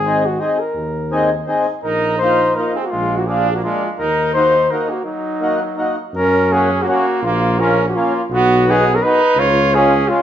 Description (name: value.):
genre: alpine folk, alpine dance band.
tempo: 167 BPM.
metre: 3/4.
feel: swing 54% on 8ths, rubato.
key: Eb dorian, F# major from 6.2 s.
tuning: A4 = 440 Hz.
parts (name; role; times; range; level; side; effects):
warm flugelhorn; melody; 0.0-10.2 s; Eb4 to C#5; -17 LUFS; left 1 dB; none.
warm tuba; bass; 0.0-10.1 s; Ab1 to F#2; -22 LUFS; right 1 dB; none.
mellow accordion; accompaniment; 0.1-10.2 s; G#3 to Ab4; -19 LUFS; equal; none.
clear trumpet; second line; 1.8-10.2 s; Gb3 to E#4; -21 LUFS; right 4 dB; none.
room: wet large studio reverb, RT60 1.2 s.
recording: band playing live in one room, nothing above 7.6 kHz.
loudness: -14 LUFS.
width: side -10 dB against mid.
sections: 0.0-6.2 A section; 6.2-10.2 B section.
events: break 5.1-6.2.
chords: 0.0 Abadd9; 1.8 Bbsus4; 2.9 Bb; 4.0 Ebm; 6.2 F#; 7.2 A#m; 8.3 B; 9.4 C#.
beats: 0.06 0.41 | 0.76 1.12 1.48 | 1.85 2.21 2.58 | 2.94 3.29 3.65 | 4.01 4.36 4.71 | 5.07 5.42 5.78 | 6.15 6.51 6.88 | 7.24 7.60 7.95 | 8.31 8.67 9.02 | 9.38 9.74 10.10.